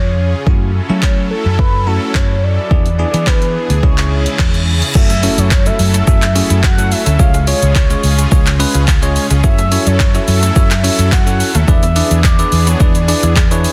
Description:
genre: dance-pop.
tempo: 107 BPM.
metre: 4/4.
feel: straight.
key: F# minor.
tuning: A4 = 442 Hz.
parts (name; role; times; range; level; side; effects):
mellow horn-like synth lead; melody; 0.0-13.6 s; A4 to F#5; -24 LUFS; equal; chorus, phaser, dub echo.
supersaw pad; sustained chords; 0.0-13.7 s; C#3 to A4; -26 LUFS; equal; sidechain pumping.
vintage muted fingered electric bass; bass; 0.0-13.7 s; C#2 to F#3; -17 LUFS; equal; sidechain pumping.
bell-like tine electric piano; accompaniment; 0.5-13.7 s; G#3 to D5; -24 LUFS; equal; sidechain pumping.
deep house drum kit; drums; 0.5-13.7 s; crash cymbal, handclaps, hi-hat, kick drum, shaker; -16 LUFS; equal; overdrive.
reverse cymbal and impact; sound effects; 4.1-7.2 s; none; -27 LUFS; equal; none.
mallet-like synth pluck; arpeggios; 5.0-13.5 s; E#3 to E#5; -28 LUFS; equal; none.
room: light reverb, digital ambience.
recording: dense, heavily limited modern master.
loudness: -13 LUFS.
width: mono.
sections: 0.0-5.0 A section; 5.0-13.7 B section.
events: reverse cymbal 4.1-5.0; impact 5.0-7.2.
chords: 0.5 F#m7; 2.7 E7; 3.8 C#m; 5.0 F#m7; 7.2 C#; 9.4 F#m7; 11.7 E7.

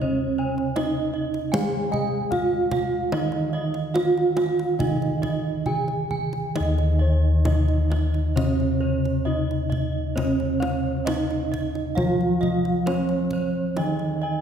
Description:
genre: Javanese gamelan.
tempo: 66-81 BPM.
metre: 4/4.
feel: straight.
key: unclear.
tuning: A4 = 440 Hz.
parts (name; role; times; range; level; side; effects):
gamelan-type bronze metallophone; melody; 0.0-14.4 s; Db4-45c to Ab4-35c; -26 LUFS; right 3 dB; none.
gamelan-type bronze metallophone; accompaniment; 0.0-14.4 s; Db3-45c to Ab3-35c; -27 LUFS; left 1 dB; none.
gamelan-type bossed gongs; arpeggios; 0.0-14.4 s; Db5-45c to Ab5-35c; -33 LUFS; left 2 dB; none.
gamelan-type bronze metallophone; arpeggios; 0.0-14.4 s; Db5-45c to Ab5-35c; -32 LUFS; right 5 dB; none.
gamelan-type bossed gongs; bass; 0.0-14.4 s; Eb2 to F4+30c; -27 LUFS; left 1 dB; none.
kendang; percussion; 0.6-14.1 s; none; -32 LUFS; right 1 dB; none.
room: wet concert hall reverb, RT60 2.0 s.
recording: heard from further back in the room.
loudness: -21 LUFS.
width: side -8 dB against mid.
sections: 0.0-6.6 A section; 6.6-14.4 B section.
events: none.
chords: none.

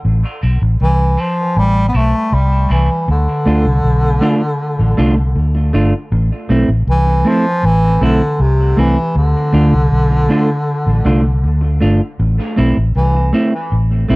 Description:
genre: dub reggae.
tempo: 79 BPM.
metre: 4/4.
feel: straight.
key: A minor.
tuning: A4 = 441 Hz.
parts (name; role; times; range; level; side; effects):
vintage muted fingered electric bass; bass; 0.0-14.2 s; G1 to D2; -13 LUFS; equal; tube saturation.
semi-hollow electric guitar; accompaniment; 0.4-14.2 s; A3 to F4; -18 LUFS; right 1 dB; high-pass filter, cassette tape, dub echo.
breathy bass clarinet; melody; 0.8-13.3 s; C3 to B3; -16 LUFS; equal; cassette tape, dub echo.
room: light reverb.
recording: home recording on cassette.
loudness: -12 LUFS.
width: side -24 dB against mid.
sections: 0.0-14.2 A section.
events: none.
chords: 0.0 Am; 3.1 Dm; 6.1 Am; 9.2 Dm; 12.2 Am.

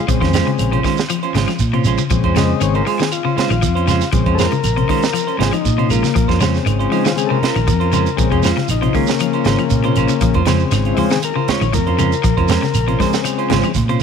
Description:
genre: afrobeat.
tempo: 118 BPM.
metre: 4/4.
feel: straight.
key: Bb minor.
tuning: A4 = 436 Hz.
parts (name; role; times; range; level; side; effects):
combo organ; accompaniment; 0.0-13.7 s; Db3 to Eb5; -20 LUFS; left 10 dB; none.
electric guitar at the edge of break-up; arpeggios; 0.0-14.0 s; C3 to F3; -21 LUFS; left 7 dB; none.
fingered electric bass; bass; 0.1-14.0 s; Ab1 to Bb2; -18 LUFS; right 1 dB; none.
tight funk drum kit; drums; 0.1-14.0 s; hi-hat, kick drum, snare drum; -22 LUFS; right 4 dB; none.
shekere; percussion; 0.1-14.0 s; none; -26 LUFS; right 7 dB; none.
semi-hollow electric guitar; stabs; 0.2-14.0 s; Ab3 to C5; -21 LUFS; right 12 dB; none.
claves; percussion; 0.3-13.8 s; none; -32 LUFS; left 12 dB; none.
congas; percussion; 10.2-13.9 s; none; -26 LUFS; right 8 dB; none.
room: light reverb, small room reverb.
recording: 1960s-style stereo with parts hard left and right.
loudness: -14 LUFS.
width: side -7 dB against mid.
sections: 0.0-14.0 A section.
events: transistor combo organ solo 0.0-14.0.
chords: 0.0 Bbm9.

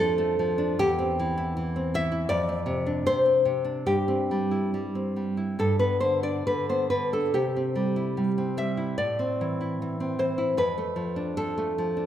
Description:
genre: romantic piece for solo classical guitar.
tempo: 67-83 BPM.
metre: 4/4.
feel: rubato.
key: C major.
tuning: A4 = 440 Hz.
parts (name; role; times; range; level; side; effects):
nylon-string guitar; solo; 0.0-12.1 s; E2 to E5; -24 LUFS; equal; none.
room: moderate concert hall reverb, RT60 1.9 s.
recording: recorded in a church or concert hall.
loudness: -24 LUFS.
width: side -10 dB against mid.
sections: 0.0-12.1 A section.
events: none.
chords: 0.0 Dm/F; 0.8 C/E; 2.3 Dm7/F; 3.9 C/G; 5.6 G; 7.3 C; 9.0 Am; 10.6 Dm/F.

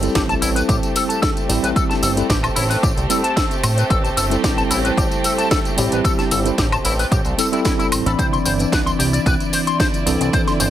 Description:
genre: nu-disco, nu disco.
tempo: 112 BPM.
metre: 4/4.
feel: straight.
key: unclear.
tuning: A4 = 440 Hz.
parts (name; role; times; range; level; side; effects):
tine electric piano; accompaniment; 0.0-10.7 s; E3 to B5; -22 LUFS; equal; medium stereo tremolo, low-pass filter, dub echo.
warm chamber violin section; sustained chords; 0.0-10.7 s; A3 to D5; -25 LUFS; right 2 dB; sidechain pumping.
chorused synth bass; bass; 0.0-10.7 s; G1 to A2; -22 LUFS; equal; none.
house drum kit; drums; 0.0-10.7 s; hi-hat, snare drum, woodblock; -24 LUFS; equal; overdrive.
tambourine; percussion; 0.0-10.7 s; none; -28 LUFS; left 2 dB; none.
electric guitar with an envelope filter; riff; 0.1-10.7 s; E4 to C6; -23 LUFS; left 3 dB; analog chorus, dub echo.
electronic kick drum; drums; 0.2-10.4 s; none; -21 LUFS; equal; overdrive.
room: light reverb, digital ambience.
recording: heavily compressed radio sound.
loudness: -16 LUFS.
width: side -11 dB against mid.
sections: 0.0-10.7 A section.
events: none.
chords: 0.0 Cadd9.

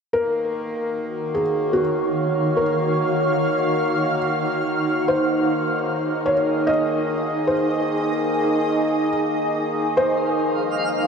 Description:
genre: ambient.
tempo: 73 BPM.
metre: 3/4.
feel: straight.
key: Eb dorian.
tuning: A4 = 440 Hz.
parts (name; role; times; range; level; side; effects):
felt-muted upright piano; melody; 0.1-11.1 s; Gb4 to Eb5; -23 LUFS; equal; tape echo.
shimmering ambient pad; sustained chords; 1.1-11.1 s; Eb3 to F5; -21 LUFS; right 1 dB; chorus, built-in reverb.
hand-pumped harmonium; drone; 0.2-11.1 s; Eb3 to Bb3; -29 LUFS; left 2 dB; stereo widening.
twinkling granular texture; texture; 10.3-11.1 s; F5; -27 LUFS; right 1 dB; built-in reverb.
room: wet cathedral reverb, RT60 5.2 s.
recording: none.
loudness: -19 LUFS.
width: side -6 dB against mid.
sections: 0.2-11.1 A section.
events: none.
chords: 0.2 Ebm7; 5.1 Ab; 10.0 Fm7.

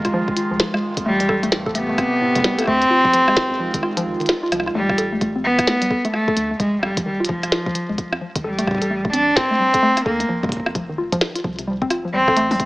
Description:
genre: IDM.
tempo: 130 BPM.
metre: 4/4.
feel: swing 62% on 16ths.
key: A minor.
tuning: A4 = 438 Hz.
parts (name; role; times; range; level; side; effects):
rich cello; melody; 0.0-12.6 s; F3 to D4; -19 LUFS; equal; none.
warbly tape-like pad; sustained chords; 0.0-4.7 s; C3 to G4; -27 LUFS; right 1 dB; chorus, built-in reverb, phaser.
warbly dusty pluck; arpeggios; 0.0-12.7 s; F2 to A4; -24 LUFS; left 1 dB; chorus, digital delay.
warm sub bass; bass; 0.0-12.7 s; F1 to D2; -35 LUFS; equal; tube saturation.
glitchy drum kit; drums; 0.0-12.7 s; hi-hat, rim click, snare drum, toms; -22 LUFS; equal; overdrive, small room ambience.
electronic kick drum; drums; 0.1-12.7 s; none; -26 LUFS; equal; overdrive, small room ambience.
room: light reverb, digital ambience.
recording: small speaker sound.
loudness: -17 LUFS.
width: side -20 dB against mid.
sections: 0.0-4.8 A section; 4.8-12.7 A section.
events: break 3.8-4.8.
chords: 0.0 Fm7; 1.1 Am7; 2.9 Fm7; 4.8 A7(no3); 6.6 N.C.; 8.4 Am7; 10.3 F5; 12.1 Am7.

